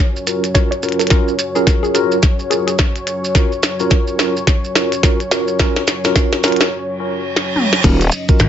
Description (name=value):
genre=glitch hop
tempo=107 BPM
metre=4/4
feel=swing 60% on 16ths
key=Eb minor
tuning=A4 = 440 Hz
part: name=dark analog pad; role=sustained chords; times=0.0-8.5 s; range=Gb3 to Eb5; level=-23 LUFS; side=left 1 dB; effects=chorus, sidechain pumping
part: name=maracas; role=percussion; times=0.2-8.5 s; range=none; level=-24 LUFS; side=right 4 dB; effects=none
part: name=mellow tine electric piano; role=stabs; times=0.3-8.5 s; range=Db4 to Bb4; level=-20 LUFS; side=right 2 dB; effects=medium stereo tremolo, sidechain pumping, low-pass filter, digital delay
part: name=glitchy drum kit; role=drums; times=0.3-8.5 s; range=crash cymbal, hi-hat, snare drum, toms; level=-18 LUFS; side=left 1 dB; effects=none
part: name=woody wave-folded pluck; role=melody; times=0.5-2.7 s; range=Ab4 to Db5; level=-22 LUFS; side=left 4 dB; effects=chorus, digital delay
part: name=electronic kick drum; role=drums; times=0.5-8.4 s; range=none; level=-14 LUFS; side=equal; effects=overdrive
part: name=reverse cymbal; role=sound effects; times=7.0-7.8 s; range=none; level=-21 LUFS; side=right 4 dB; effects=none
part: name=growl bass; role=bass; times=7.8-8.1 s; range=Eb1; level=-13 LUFS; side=equal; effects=chorus, tube saturation
part: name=vintage slap bass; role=bass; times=8.4-8.5 s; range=Ab1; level=-12 LUFS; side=equal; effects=none
room=moderate studio reverb, RT60 0.6 s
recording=nothing above 7.7 kHz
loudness=-13 LUFS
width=side -9 dB against mid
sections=0.0-7.8 A section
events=build-up 0.0-7.8; drum fill 0.0-6.7, 7.4-7.8; break 6.7-7.8; reverse cymbal 7.0-7.8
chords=0.0 Ebm7 (rootless); 7.8 Ebm7